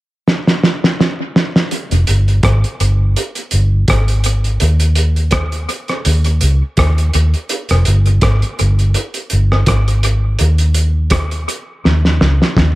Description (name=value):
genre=lovers rock reggae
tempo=83 BPM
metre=4/4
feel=swing 55% on 16ths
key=F minor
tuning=A4 = 436 Hz
part: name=cloth-damped thuddy drum kit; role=drums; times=0.3-12.8 s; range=hi-hat, kick drum, rim click, snare drum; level=-16 LUFS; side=right 1 dB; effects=tape echo
part: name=vintage muted fingered electric bass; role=bass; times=1.9-12.8 s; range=F1 to Eb2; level=-12 LUFS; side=equal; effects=none
room=little or no reverb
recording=none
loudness=-12 LUFS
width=side -18 dB against mid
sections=0.0-1.7 A section; 1.7-12.8 B section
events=drum fill 0.3-1.7, 11.8-12.8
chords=none